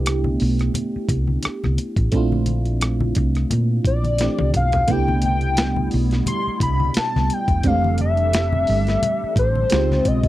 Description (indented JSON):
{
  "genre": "R&B, neo-soul",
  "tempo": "87 BPM",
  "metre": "4/4",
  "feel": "swing 56% on 16ths",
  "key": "C major",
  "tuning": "A4 = 442 Hz",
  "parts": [
    { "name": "FM electric piano", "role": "accompaniment", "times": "0.0-10.3 s", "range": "E3 to G4", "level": "-25 LUFS", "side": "right 2 dB", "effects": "chorus, phaser" },
    { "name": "hollow-body short-scale fingered electric bass", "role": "bass", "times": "0.0-10.3 s", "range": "E1 to Bb2", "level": "-20 LUFS", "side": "equal", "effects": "none" },
    { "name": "dusty soul sampler-style drum kit", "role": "drums", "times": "0.1-10.3 s", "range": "hi-hat, kick drum, rim click, snare drum, toms", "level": "-23 LUFS", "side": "equal", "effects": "none" },
    { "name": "congas", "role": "percussion", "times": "0.1-10.1 s", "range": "none", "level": "-28 LUFS", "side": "left 3 dB", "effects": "none" },
    { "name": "hollow square lead", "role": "melody", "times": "3.9-10.3 s", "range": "C5 to C6", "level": "-22 LUFS", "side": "left 2 dB", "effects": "chorus" },
    { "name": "hollow soft pad", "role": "sustained chords", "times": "4.9-10.3 s", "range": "B2 to A4", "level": "-28 LUFS", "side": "right 1 dB", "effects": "ensemble chorus" }
  ],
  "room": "little or no reverb",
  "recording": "dry, close 1970s-style studio recording",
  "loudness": "-17 LUFS",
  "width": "side -15 dB against mid",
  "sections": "0.0-10.3 A section",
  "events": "drum fill 4.2-4.9",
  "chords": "0.0 Cmaj7; 2.1 Bbmaj9; 4.9 Cmaj7; 7.6 F69; 9.7 Dbmaj7",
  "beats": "0.05 0.74 1.43 | 2.12 2.81 3.50 4.19 | 4.88 5.57 6.26 6.95 | 7.64 8.33 9.02 9.71"
}